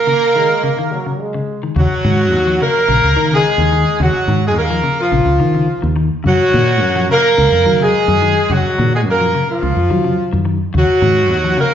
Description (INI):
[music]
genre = afrobeat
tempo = 107 BPM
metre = 4/4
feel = straight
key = Eb minor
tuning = A4 = 441 Hz
[part]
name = warm horn section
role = melody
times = 0.0-11.7 s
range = F4 to Bb4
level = -15 LUFS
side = right 1 dB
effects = none
[part]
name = growling tenor saxophone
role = second line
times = 0.0-11.7 s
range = F3 to Bb3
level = -20 LUFS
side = equal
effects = none
[part]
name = bright trombone section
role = second line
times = 0.1-1.8 s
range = Gb3 to Bb3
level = -23 LUFS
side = right 3 dB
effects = none
[part]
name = semi-hollow electric guitar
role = arpeggios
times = 0.1-11.7 s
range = Db3 to F3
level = -21 LUFS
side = left 5 dB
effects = none
[part]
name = fingered electric bass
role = bass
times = 1.8-11.6 s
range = Bb1 to Gb3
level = -17 LUFS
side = right 1 dB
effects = none
[sound]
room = wet large studio reverb, RT60 1.3 s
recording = band playing live in one room, nothing above 7.6 kHz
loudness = -12 LUFS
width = side -9 dB against mid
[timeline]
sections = 0.0-1.8 A section; 1.8-11.7 A section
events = break 0.0-1.8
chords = 0.0 Gbadd9 (rootless); 1.8 Ebm7; 6.3 Gbmaj9; 10.7 Ebm7